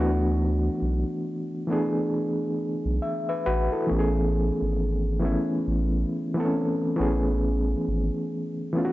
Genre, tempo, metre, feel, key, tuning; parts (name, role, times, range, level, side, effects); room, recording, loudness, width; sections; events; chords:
hip hop; 68 BPM; 4/4; swing 60% on 16ths; A major; A4 = 445 Hz
overdriven reed electric piano; accompaniment; 0.0-8.9 s; E3 to F#5; -25 LUFS; equal; fast tremolo
saturated sub bass; bass; 0.0-8.1 s; G#1 to D2; -26 LUFS; equal
light reverb, digital ambience; dry, gritty hardware recording, transformer saturation, nothing above 7.8 kHz; -23 LUFS; side -17 dB against mid
0.0-8.9 A section
reed electric piano fill 2.6-3.9
0.0 D6; 3.9 Amaj9